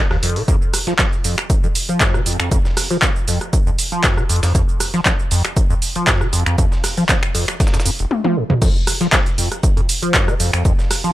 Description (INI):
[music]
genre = acid house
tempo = 118 BPM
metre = 4/4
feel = swing 53% on 16ths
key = unclear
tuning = A4 = 440 Hz
[part]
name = liquid acid bass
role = riff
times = 0.1-11.1 s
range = F1 to F3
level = -20 LUFS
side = equal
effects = phaser, overdrive, analog chorus, cassette tape, tape echo
[part]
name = dusty soul sampler-style drum kit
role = drums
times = 0.1-11.0 s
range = hi-hat, shaker, snare drum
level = -28 LUFS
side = right 2 dB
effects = none
[part]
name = punchy analog drum machine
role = drums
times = 0.1-11.1 s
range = crash cymbal, finger snaps, handclaps, hi-hat, rim click, shaker, toms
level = -19 LUFS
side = equal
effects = none
[part]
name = electronic kick drum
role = drums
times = 0.5-10.8 s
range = none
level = -18 LUFS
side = equal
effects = none
[sound]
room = digital ambience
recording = none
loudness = -14 LUFS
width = side -15 dB against mid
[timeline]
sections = 0.0-8.6 A section; 8.6-11.1 B section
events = drum fill 8.1-8.6; drop 8.6-11.1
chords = none